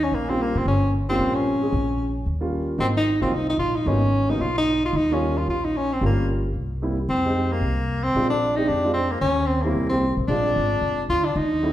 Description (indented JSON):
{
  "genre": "jazz, small-group swing and bop",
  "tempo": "224 BPM",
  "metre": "4/4",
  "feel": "swing 58% on 8ths",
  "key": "Eb mixolydian",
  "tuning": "A4 = 439 Hz",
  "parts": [
    { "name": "warm tenor saxophone", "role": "melody", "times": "0.0-11.7 s", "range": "Bb3 to F4", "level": "-22 LUFS", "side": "equal", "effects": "none" },
    { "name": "upright bass", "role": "bass", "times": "0.0-11.7 s", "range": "F1 to Bb2", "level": "-26 LUFS", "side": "equal", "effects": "none" },
    { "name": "warm baby grand piano", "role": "accompaniment", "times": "0.3-11.7 s", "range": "Gb3 to Ab4", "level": "-27 LUFS", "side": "right 1 dB", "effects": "none" }
  ],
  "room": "wet large studio reverb, RT60 1.4 s",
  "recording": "heard from further back in the room",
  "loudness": "-20 LUFS",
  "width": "side -13 dB against mid",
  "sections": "0.0-11.4 A section",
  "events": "none",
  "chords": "0.0 Eb9 (rootless); 1.7 Bbm; 2.3 Eb9; 2.8 Ab9; 3.9 Abm7; 4.9 Eb9; 6.0 Gm7b5; 6.5 C7; 7.1 Fm7; 8.2 Bb9; 9.2 Eb7; 9.8 C7; 10.3 Bb9",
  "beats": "0.11 0.38 | 0.65 0.92 1.19 1.45 | 1.72 1.99 2.26 2.53 | 2.80 3.06 3.33 3.60 | 3.87 4.14 4.41 4.67 | 4.94 5.21 5.48 5.75 | 6.01 6.28 6.55 6.82 | 7.08 7.35 7.62 7.89 | 8.15 8.42 8.69 8.96 | 9.22 9.49 9.76 10.03 | 10.29 10.56 10.83 11.09 | 11.36 11.63"
}